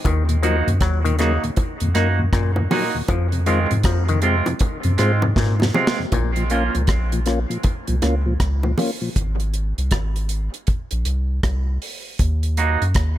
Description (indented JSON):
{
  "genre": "dub reggae",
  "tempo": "79 BPM",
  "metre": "4/4",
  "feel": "swing 62% on 16ths",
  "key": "Bb minor",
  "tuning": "A4 = 440 Hz",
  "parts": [
    { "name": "auto-wah clav", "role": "arpeggios", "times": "0.0-6.3 s", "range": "Bb2 to Gb3", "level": "-28 LUFS", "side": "left 7 dB", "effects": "dub echo" },
    { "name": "soft dub sub bass", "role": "bass", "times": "0.1-13.2 s", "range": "Ab1 to Ab2", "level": "-20 LUFS", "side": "equal", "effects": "none" },
    { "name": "deep reggae drum kit", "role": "drums", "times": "0.1-13.2 s", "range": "hi-hat, kick drum, rim click, snare drum", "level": "-23 LUFS", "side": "equal", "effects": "none" },
    { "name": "bongos", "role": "percussion", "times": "0.1-9.0 s", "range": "none", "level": "-29 LUFS", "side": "right 1 dB", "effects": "dub echo" },
    { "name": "mellow tonewheel organ", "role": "accompaniment", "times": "0.3-9.1 s", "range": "Eb2 to F4", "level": "-26 LUFS", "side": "left 2 dB", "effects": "chorus vibrato, slow rotary speaker" },
    { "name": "clean electric guitar", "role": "accompaniment", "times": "0.4-6.8, 12.6-12.8 s", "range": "Ab3 to Gb4", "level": "-25 LUFS", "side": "right 5 dB", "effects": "dub echo" }
  ],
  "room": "small room ambience",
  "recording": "faint mains hum",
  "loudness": "-18 LUFS",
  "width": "side -13 dB against mid",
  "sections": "0.0-13.2 A section",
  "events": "drum fill 5.4-6.1; break 6.1-13.2; part muted 9.2-13.2",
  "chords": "0.0 Ebm; 3.1 Fm; 6.1 Bbm; 9.2 Ab; 12.2 Ebm",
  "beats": "| 0.05 0.81 1.57 2.33 | 3.09 3.85 4.60 5.36 | 6.12 6.88 7.64 8.40 | 9.16 9.92 10.68 11.44 | 12.19 12.95"
}